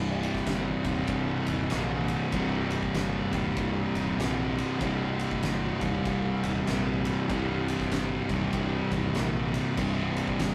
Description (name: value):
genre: stoner and doom metal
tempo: 97 BPM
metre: 4/4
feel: swing 62% on 8ths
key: unclear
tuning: A4 = 438 Hz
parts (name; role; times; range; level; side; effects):
- thick fuzz guitar; riff; 0.0-10.5 s; C2 to C3; -33 LUFS; equal; distortion
- thick fuzz guitar; riff; 0.0-10.5 s; C2 to C3; -33 LUFS; equal; distortion
- growling fingered electric bass; bass; 0.0-10.5 s; C1 to Bb1; -38 LUFS; equal; overdrive, tube saturation
- oversized low-tuned drum kit; drums; 0.2-10.5 s; crash cymbal, kick drum, ride cymbal, snare drum; -37 LUFS; equal; none
room: light reverb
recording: rough rehearsal-room recording, tube saturation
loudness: -29 LUFS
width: mono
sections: 0.0-10.5 A section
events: none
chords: 0.0 Cm